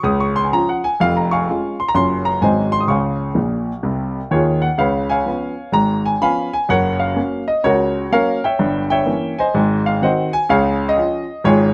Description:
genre	jazz, stride piano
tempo	126 BPM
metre	4/4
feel	swing 65% on 8ths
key	Db major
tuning	A4 = 440 Hz
part	warm concert grand piano	solo	0.0-11.7 s	F1 to Eb6	-18 LUFS	equal	slapback echo
room	light reverb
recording	recorded outdoors, with no room sound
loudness	-18 LUFS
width	mono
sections	0.0-4.8 A section; 4.8-11.7 B section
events	grand piano fill 3.4-4.8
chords	0.0 Db; 1.0 Db/F; 1.9 Gbmaj7; 2.4 Ab7; 2.9 Db; 4.8 Db7; 6.7 Gb; 8.6 Gdim7; 9.5 Ab7; 10.5 Db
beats	0.04 0.52 | 0.99 1.46 1.94 2.42 | 2.89 3.37 3.84 4.32 | 4.79 5.27 5.74 6.22 | 6.69 7.17 7.64 8.12 | 8.59 9.07 9.54 10.02 | 10.49 10.97 11.45

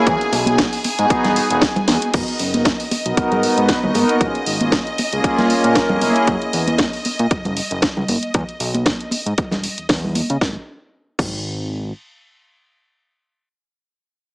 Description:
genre	nu-disco, nu disco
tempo	116 BPM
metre	4/4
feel	swing 56% on 16ths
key	unclear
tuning	A4 = 441 Hz
part	warm analog pad	accompaniment	0.0-6.3 s	A#3 to B4	-19 LUFS	equal	chorus, sidechain pumping, dub echo
part	bright symphonic violin section	sustained chords	0.0-10.4 s	G#4 to G#5	-26 LUFS	equal	sidechain pumping
part	fat analog bass	bass	0.1-11.9 s	E1 to C#3	-22 LUFS	equal	sidechain pumping
part	electronic kick drum	drums	0.1-11.4 s	none	-21 LUFS	equal	overdrive
part	house drum kit	drums	0.1-11.4 s	crash cymbal, hi-hat, snare drum	-22 LUFS	equal	overdrive
part	congas	percussion	0.3-10.3 s	none	-23 LUFS	equal	none
room	light reverb, digital ambience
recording	small speaker sound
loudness	-16 LUFS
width	side -28 dB against mid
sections	0.0-2.1 A section; 2.1-10.4 B section; 10.4-14.3 C section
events	drop 0.0-2.1; drum fill 1.9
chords	0.1 Emaj7; 2.1 G#m7; 4.2 A#m7; 6.0 F#7; 8.3 Emaj7(no3); 10.4 N.C.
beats	| 0.07 0.58 1.10 1.62 | 2.14 2.65 3.17 3.69 | 4.21 4.72 5.24 5.76 | 6.28 6.79 7.31 7.83 | 8.34 8.86 9.38 9.89 | 10.41 10.93 11.45

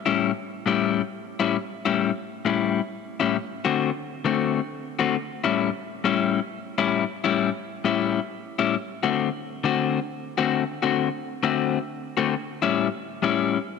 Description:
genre	blues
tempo	134 BPM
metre	4/4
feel	swing 65% on 8ths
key	A mixolydian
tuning	A4 = 440 Hz
part	electric guitar at the edge of break-up	solo	0.1-13.6 s	A2 to F#4	-22 LUFS	left 8 dB	none
room	moderate plate reverb, RT60 3.0 s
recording	none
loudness	-22 LUFS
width	side -5 dB against mid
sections	0.0-1.6 A section; 1.6-13.8 A section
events	none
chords	0.0 A7; 3.4 D7; 5.2 A7; 8.7 D7; 12.3 A7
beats	0.22 0.67 1.11 | 1.56 2.01 2.46 2.91 | 3.36 3.81 4.26 4.71 | 5.16 5.60 6.05 6.50 | 6.95 7.40 7.85 8.30 | 8.75 9.20 9.65 10.09 | 10.54 10.99 11.44 11.89 | 12.34 12.79 13.24

